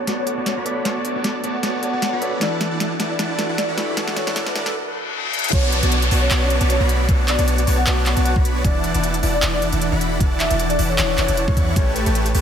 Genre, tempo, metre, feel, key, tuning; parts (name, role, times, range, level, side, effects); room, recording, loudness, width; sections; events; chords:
future bass; 154 BPM; 4/4; swing 54% on 16ths, half-time; B minor; A4 = 440 Hz
soft octave-layered synth lead; melody; 0.0-11.9 s; A4 to F#5; -26 LUFS; left 2 dB; chorus, phaser, sidechain pumping, ping-pong delay
tine electric piano; accompaniment; 0.0-5.6 s; E3 to D5; -29 LUFS; right 2 dB; sidechain pumping, digital delay
shimmering ambient pad; sustained chords; 0.0-12.4 s; E3 to A4; -31 LUFS; left 1 dB; chorus, built-in reverb, sidechain pumping
warm 808-style bass; bass; 0.0-12.4 s; E1 to E2; -21 LUFS; equal; sidechain pumping, high-pass filter
riser, reverse cymbal and downlifter; sound effects; 3.2-8.6 s; -27 LUFS; left 2 dB
supersaw chords; riff; 0.1-12.4 s; E3 to C#6; -23 LUFS; equal; sidechain pumping, low-pass filter, digital delay
trap drum kit; drums; 0.1-12.4 s; crash cymbal, handclaps, hi-hat, snare drum; -25 LUFS; equal; overdrive
electronic kick drum; drums; 5.5-11.8 s; -18 LUFS; equal; overdrive
light reverb; high-pass filter; -17 LUFS; side -8 dB against mid
0.0-5.5 A section; 5.5-12.4 B section
build-up 0.0-5.5; drum fill 0.0-4.8, 5.3; filter sweep on supersaw synth 0.0-5.5; filter sweep on soft synth lead 0.0-5.5; filter sweep 0.0-5.5; reverse cymbal 4.8-5.5; drop 5.5-12.4
0.0 Bm9; 2.4 E9sus4; 5.5 Bm9; 8.6 E9sus4; 11.8 A9